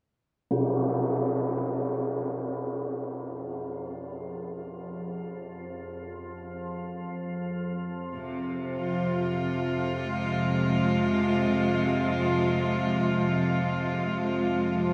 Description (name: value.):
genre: dark ambient drone.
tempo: free time.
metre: none.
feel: none.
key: F minor.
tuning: A4 = 444 Hz.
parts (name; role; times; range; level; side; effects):
organ-like drone; drone; 2.7-14.9 s; F2 to F3; -34 LUFS; equal; ensemble chorus, built-in reverb, phaser.
tam-tam; percussion; 0.5-0.7 s; none; -33 LUFS; equal; low-pass filter on cymbals, dub echo.
quartz singing bowl; texture; 0.5-14.9 s; Ab4; -40 LUFS; equal; none.
rich studio cello section; sustained chords; 8.1-14.9 s; C3 to F4; -28 LUFS; equal; none.
room: wet spring reverb, RT60 2.5 s.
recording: echo-heavy mix.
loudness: -28 LUFS.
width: mono.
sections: 0.5-14.9 A section.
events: fade-in on synth drone 0.5-14.9; fade-out on singing bowl 0.5-14.9.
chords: 0.5 Fm.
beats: free time.